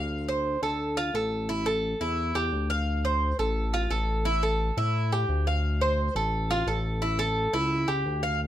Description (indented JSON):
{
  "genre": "latin, Cuban son and guajira",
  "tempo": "174 BPM",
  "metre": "4/4",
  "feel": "straight",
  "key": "D minor",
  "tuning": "A4 = 440 Hz",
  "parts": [
    { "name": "Cuban tres", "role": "arpeggios", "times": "0.0-8.4 s", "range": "E4 to F5", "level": "-27 LUFS", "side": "right 1 dB", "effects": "none" },
    { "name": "smooth synth bass", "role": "bass", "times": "0.0-8.5 s", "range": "A1 to A2", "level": "-28 LUFS", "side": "left 1 dB", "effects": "none" }
  ],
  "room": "light reverb",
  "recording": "close, detailed microphones",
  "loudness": "-25 LUFS",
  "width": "side -12 dB against mid",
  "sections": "0.0-8.4 A section",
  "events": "none",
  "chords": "0.1 Dm7; 1.5 A5; 2.9 Dm7; 4.3 A5; 5.6 Dm7; 7.0 A7"
}